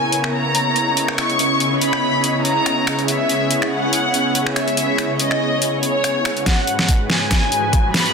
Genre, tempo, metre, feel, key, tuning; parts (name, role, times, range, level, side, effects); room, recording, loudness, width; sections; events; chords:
heavy wobble dubstep; 142 BPM; 4/4; swing 54% on 16ths, half-time; A4 = 439 Hz
dark studio violin section; melody; 0.0-8.1 s; C#5 to C#6; -20 LUFS; left 2 dB; low-pass filter, tape echo
supersaw pad; sustained chords; 0.0-8.1 s; G#2 to C#5; -23 LUFS; right 1 dB; sidechain pumping
granular cloud pad; texture; 0.0-8.1 s; C#4 to D#6; -23 LUFS; right 1 dB; built-in reverb, sidechain pumping
dubstep drum kit; drums; 0.1-8.1 s; finger snaps, hi-hat, snare drum; -21 LUFS; equal; overdrive, soft clipping on snare
electronic kick drum; drums; 6.5-7.8 s; -17 LUFS; equal; overdrive
riser; sound effects; 7.1-8.1 s; -33 LUFS; right 2 dB
wet digital room reverb, RT60 1.1 s; dense, heavily limited modern master; -16 LUFS; side -5 dB against mid
0.0-6.5 A section; 6.5-8.1 B section
build-up 6.5-8.1; drum fill 6.5-8.1; filter sweep on violin section 6.5-8.1
0.0 C#m7; 6.5 G#m7